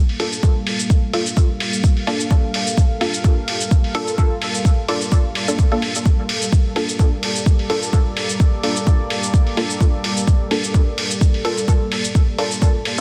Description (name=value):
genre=dub techno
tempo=128 BPM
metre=4/4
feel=swing 55% on 16ths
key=G minor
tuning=A4 = 440 Hz
part: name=deep dark ambient pad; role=sustained chords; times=0.1-13.0 s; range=G3 to F5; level=-29 LUFS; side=equal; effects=chorus, built-in reverb, sidechain pumping
part: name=electronic hi-hat and shaker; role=drums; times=0.1-13.0 s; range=none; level=-26 LUFS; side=equal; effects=overdrive, studio reverb
part: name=filtered dub chord stab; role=stabs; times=0.2-13.0 s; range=Bb3 to A4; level=-27 LUFS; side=equal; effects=chorus, phaser, sidechain pumping, dub echo
part: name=electronic kick drum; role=drums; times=0.4-12.7 s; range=none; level=-17 LUFS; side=equal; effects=studio reverb
room=little or no reverb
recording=dense, heavily limited modern master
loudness=-18 LUFS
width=mono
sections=0.0-13.0 A section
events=none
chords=0.0 Gm9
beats=| 0.43 0.90 1.37 1.84 | 2.31 2.77 3.24 3.71 | 4.18 4.65 5.12 5.59 | 6.06 6.53 6.99 7.46 | 7.93 8.40 8.87 9.34 | 9.81 10.28 10.74 11.21 | 11.68 12.15 12.62